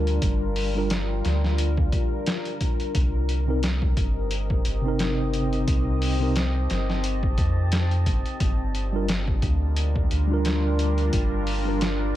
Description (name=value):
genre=trip hop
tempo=88 BPM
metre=4/4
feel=swing 56% on 16ths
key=G minor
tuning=A4 = 440 Hz
part: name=mellow tine electric piano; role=accompaniment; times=0.0-11.8 s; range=C3 to Bb4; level=-28 LUFS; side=equal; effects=medium stereo tremolo, harmonic tremolo, tape echo
part: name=deep dark ambient pad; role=sustained chords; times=0.0-12.2 s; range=G3 to A5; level=-30 LUFS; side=left 1 dB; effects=chorus, built-in reverb
part: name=soft dub sub bass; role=bass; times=0.0-12.1 s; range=G1 to F2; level=-24 LUFS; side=equal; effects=none
part: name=trip hop sampler-style drum kit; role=drums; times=0.1-12.0 s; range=hi-hat, kick drum, snare drum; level=-26 LUFS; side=equal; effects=none
room=little or no reverb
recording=none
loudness=-22 LUFS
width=side -13 dB against mid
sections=0.0-12.2 A section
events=none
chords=0.0 Gm7; 2.9 Cm7; 8.4 Gm7